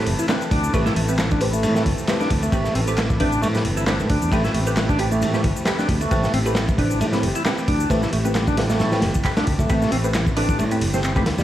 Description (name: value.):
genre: breakbeat, breaks.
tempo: 134 BPM.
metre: 4/4.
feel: swing 55% on 16ths.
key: A minor.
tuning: A4 = 441 Hz.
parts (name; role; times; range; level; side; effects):
lush unison pad; sustained chords; 0.0-11.4 s; E3 to B4; -28 LUFS; equal; chorus, sidechain pumping.
filtered dub chord stab; stabs; 0.0-11.2 s; A3 to C5; -27 LUFS; right 1 dB; phaser, wide subtle chorus, cassette tape, dub echo.
fingered electric bass; bass; 0.0-11.4 s; G1 to A2; -23 LUFS; equal; none.
crunchy breakbeat drum kit; drums; 0.1-11.4 s; kick drum, ride cymbal, snare drum; -23 LUFS; equal; none.
house drum kit; drums; 0.1-11.4 s; handclaps, hi-hat, shaker; -31 LUFS; left 1 dB; none.
bright tonewheel organ; riff; 0.2-11.4 s; G3 to E4; -25 LUFS; equal; slow rotary speaker, tube saturation, dub echo.
room: moderate studio reverb, RT60 0.6 s.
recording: played on a big sound system in a bare room, stone room reverb, vinyl crackle.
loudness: -18 LUFS.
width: side -12 dB against mid.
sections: 0.0-11.4 A section.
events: none.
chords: 0.0 Am9.